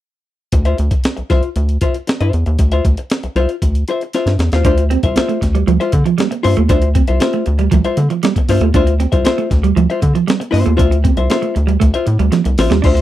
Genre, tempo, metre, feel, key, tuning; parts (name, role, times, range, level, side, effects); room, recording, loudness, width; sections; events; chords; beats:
funk; 117 BPM; 4/4; straight; D minor; A4 = 438 Hz
vintage hollow-body jazz guitar; accompaniment; 0.5-13.0 s; F4 to F5; -19 LUFS; left 5 dB
rubbery square bass; bass; 0.5-13.0 s; A1 to D3; -14 LUFS; equal
breakbeat sampler-style drum kit; drums; 0.5-13.0 s; crash cymbal, hi-hat, kick drum, snare drum; -17 LUFS; equal
semi-hollow electric guitar; riff; 4.6-13.0 s; F3 to D4; -18 LUFS; right 8 dB; lush chorus
congas; percussion; 4.9-13.0 s; -25 LUFS; right 6 dB
light reverb; dry, close 1970s-style studio recording; -12 LUFS; side -13 dB against mid
0.5-4.7 A section; 4.7-13.0 B section
drum fill 4.1-4.7, 12.3-12.8
0.5 Dm9
| 0.53 1.04 1.56 2.08 | 2.59 3.11 3.62 4.14 | 4.65 5.16 5.68 6.19 | 6.70 7.21 7.72 8.24 | 8.75 9.26 9.77 10.28 | 10.79 11.30 11.81 12.33 | 12.84